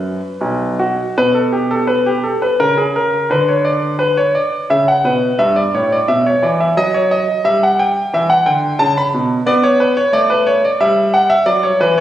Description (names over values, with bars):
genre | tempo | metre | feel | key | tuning
classical, baroque-style suite movement for grand piano | 77-91 BPM | 3/4 | rubato | unclear | A4 = 444 Hz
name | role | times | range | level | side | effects
clear concert grand piano | solo | 0.0-12.0 s | B1 to B5 | -12 LUFS | equal | none
room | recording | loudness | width
moderate recital hall reverb, RT60 1.6 s | recorded on a phone in the room, studio reverb, compression | -12 LUFS | side -12 dB against mid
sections
0.0-1.2 A section; 1.2-12.0 B section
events
none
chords
0.0 B5; 1.2 N.C.; 3.3 Bm/D; 5.4 Em/G; 6.8 N.C.; 7.4 Em; 9.5 Aadd9; 10.8 N.C.; 11.5 D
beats
0.41 | 1.17 1.89 2.60 | 3.30 4.00 4.69 | 5.38 6.08 6.76 | 7.45 8.13 8.81 | 9.48 10.14 10.80 | 11.47